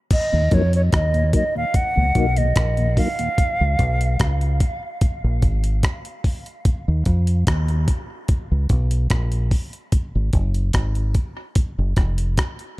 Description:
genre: dub reggae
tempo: 73 BPM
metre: 4/4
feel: straight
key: Eb minor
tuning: A4 = 440 Hz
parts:
  - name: hollow concert flute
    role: melody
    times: 0.1-4.6 s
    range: Db5 to Gb5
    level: -24 LUFS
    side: right 1 dB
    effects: dub echo
  - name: breakbeat sampler-style drum kit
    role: drums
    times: 0.1-12.8 s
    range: crash cymbal, hi-hat, kick drum, rim click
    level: -20 LUFS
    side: equal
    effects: none
  - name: mellow tonewheel organ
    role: accompaniment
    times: 0.3-3.3 s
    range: Eb2 to Eb4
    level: -27 LUFS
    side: left 3 dB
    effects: chorus vibrato, slow rotary speaker
  - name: deep dub fingered electric bass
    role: bass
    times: 0.3-12.4 s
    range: F1 to F2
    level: -19 LUFS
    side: equal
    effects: none
room: little or no reverb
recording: none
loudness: -18 LUFS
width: side -19 dB against mid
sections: 0.1-12.8 A section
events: break 3.4-12.8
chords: 0.1 Ebm; 3.4 Db; 6.7 Eb5; 9.9 Fm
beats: | 0.11 0.93 1.74 2.56 | 3.38 4.20 5.02 5.83 | 6.65 7.47 8.29 9.11 | 9.93 10.74 11.56 12.38

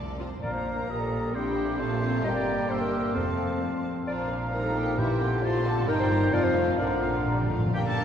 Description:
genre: quick classical-period movement for symphony orchestra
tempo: 131 BPM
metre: 2/4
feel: rubato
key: Bb major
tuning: A4 = 441 Hz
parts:
  - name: rich studio violin section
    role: second line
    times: 0.0-8.0 s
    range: C4 to D5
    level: -38 LUFS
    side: left 2 dB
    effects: none
  - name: rich studio cello section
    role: bass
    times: 0.0-8.0 s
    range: C2 to Bb2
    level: -34 LUFS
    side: right 1 dB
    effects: none
  - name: rich studio double bass section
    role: bass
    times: 0.0-8.0 s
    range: F1 to C2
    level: -34 LUFS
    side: right 2 dB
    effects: none
  - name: timpani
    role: percussion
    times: 0.0-0.9, 3.2-7.7 s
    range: F2 to Bb2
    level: -34 LUFS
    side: equal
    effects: none
  - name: rich studio viola section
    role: accompaniment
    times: 0.2-8.0 s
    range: F3 to F4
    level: -36 LUFS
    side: right 1 dB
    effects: none
  - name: rich symphonic violin section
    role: melody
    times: 0.4-8.0 s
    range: D5 to C6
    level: -39 LUFS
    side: left 2 dB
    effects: none
  - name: clear oboe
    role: second line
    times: 0.4-8.0 s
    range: G4 to A5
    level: -35 LUFS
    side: right 1 dB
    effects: none
  - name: large flute ensemble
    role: second line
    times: 0.4-7.5 s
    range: A5 to D6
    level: -37 LUFS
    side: equal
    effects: none
  - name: warm clarinet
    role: second line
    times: 0.4-8.0 s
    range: D4 to Eb5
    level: -32 LUFS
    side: equal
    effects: none
  - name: warm bassoon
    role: accompaniment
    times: 0.4-8.0 s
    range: C3 to Bb3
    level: -34 LUFS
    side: right 1 dB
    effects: none
  - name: mellow French horn section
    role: sustained chords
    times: 0.4-8.0 s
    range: Bb3 to F4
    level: -31 LUFS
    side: left 3 dB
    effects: none
room: wet church reverb, RT60 3.8 s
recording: dark, warm production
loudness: -24 LUFS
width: side -8 dB against mid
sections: 0.4-7.8 A section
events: timpani fill 6.8-7.8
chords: 0.4 Bb; 0.9 Eb/Bb; 1.3 C7/Bb; 1.8 F/Bb; 2.3 Gm; 3.2 F; 4.1 Bb; 4.5 Eb/Bb; 5.0 C7/Bb; 5.4 F/Bb; 5.9 Eb/G; 6.3 F7; 6.8 Bb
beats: | 0.43 0.89 | 1.35 1.80 | 2.25 2.70 | 3.15 3.61 | 4.07 4.53 | 4.99 5.44 | 5.88 6.33 | 6.80 7.28 | 7.75

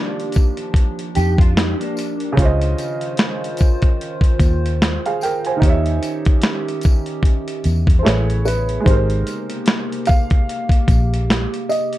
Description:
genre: lo-fi hip hop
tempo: 74 BPM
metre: 4/4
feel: swing 59% on 16ths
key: Eb major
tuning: A4 = 440 Hz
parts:
  - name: felt-muted upright piano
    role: melody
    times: 0.0-0.3, 8.0-12.0 s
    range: B4 to F5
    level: -23 LUFS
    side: equal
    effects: low-pass filter
  - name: warm upright piano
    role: accompaniment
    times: 0.0-12.0 s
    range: Db3 to Ab5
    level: -25 LUFS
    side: right 4 dB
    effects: low-pass filter
  - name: warbly tape-like pad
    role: sustained chords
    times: 0.0-12.0 s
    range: C3 to C5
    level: -28 LUFS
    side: equal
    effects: chorus, built-in reverb, low-pass filter
  - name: dusty soul sampler-style drum kit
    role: drums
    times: 0.2-12.0 s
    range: finger snaps, hi-hat, kick drum, snare drum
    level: -16 LUFS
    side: equal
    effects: none
  - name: tambourine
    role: percussion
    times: 0.3-11.9 s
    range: none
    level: -39 LUFS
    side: left 7 dB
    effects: none
  - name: mellow electric guitar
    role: second line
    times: 1.2-2.3 s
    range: Bb3 to G4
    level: -24 LUFS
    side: equal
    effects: ensemble chorus, low-pass filter, analog delay
  - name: vintage muted fingered electric bass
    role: bass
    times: 1.2-11.5 s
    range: Ab1 to F2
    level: -18 LUFS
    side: equal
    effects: none
room: little or no reverb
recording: dark, warm production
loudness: -15 LUFS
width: side -15 dB against mid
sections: 0.0-12.0 A section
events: none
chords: 0.0 Ebmaj9; 2.4 Dbmaj9; 5.6 Eb7b9; 8.1 Amaj9; 8.9 Abmaj9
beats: 0.75 1.56 | 2.38 3.19 4.00 4.81 | 5.62 6.43 7.24 8.05 | 8.86 9.67 10.48 11.29

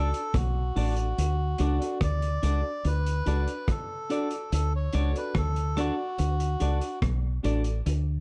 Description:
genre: roots reggae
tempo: 72 BPM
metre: 4/4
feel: straight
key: D major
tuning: A4 = 440 Hz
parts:
  - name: melodica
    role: melody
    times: 0.0-7.0 s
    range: F#4 to D5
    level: -36 LUFS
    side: equal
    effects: none
  - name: clean electric guitar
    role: accompaniment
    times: 0.0-7.6 s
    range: D4 to D5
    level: -37 LUFS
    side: equal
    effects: spring reverb
  - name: warm upright piano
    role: stabs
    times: 0.0-7.7 s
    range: D4 to D5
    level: -37 LUFS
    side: equal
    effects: none
  - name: deep dub fingered electric bass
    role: bass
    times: 0.0-8.2 s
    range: A1 to D2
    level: -28 LUFS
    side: equal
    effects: none
  - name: crunchy breakbeat drum kit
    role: drums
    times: 0.1-8.1 s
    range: hi-hat, kick drum, rim click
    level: -35 LUFS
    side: equal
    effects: none
room: light reverb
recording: dark, warm production, nothing above 10.5 kHz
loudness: -28 LUFS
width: mono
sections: 0.0-8.2 A section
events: none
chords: 0.0 D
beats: 0.34 1.18 2.01 | 2.85 3.68 4.52 5.35 | 6.19 7.02 7.86

